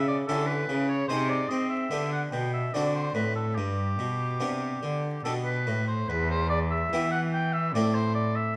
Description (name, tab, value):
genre	classical, baroque-style sonata movement with continuo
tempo	72 BPM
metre	3/4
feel	straight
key	unclear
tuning	A4 = 441 Hz
part	warm oboe	melody	0.0-8.5 s	G4 to G5	-33 LUFS	equal	none
part	harpsichord	accompaniment	0.0-8.5 s	E2 to A4	-34 LUFS	equal	none
part	rich cello	bass	0.0-8.6 s	E2 to C4	-31 LUFS	equal	none
room	moderate recital hall reverb, RT60 1.4 s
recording	vinyl crackle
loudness	-28 LUFS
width	mono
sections	0.0-6.1 A section; 6.1-8.6 A section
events	none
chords	0.0 Em13; 1.1 Ab/C; 1.9 G/D; 2.7 D7; 3.6 G; 6.1 Em; 7.7 Am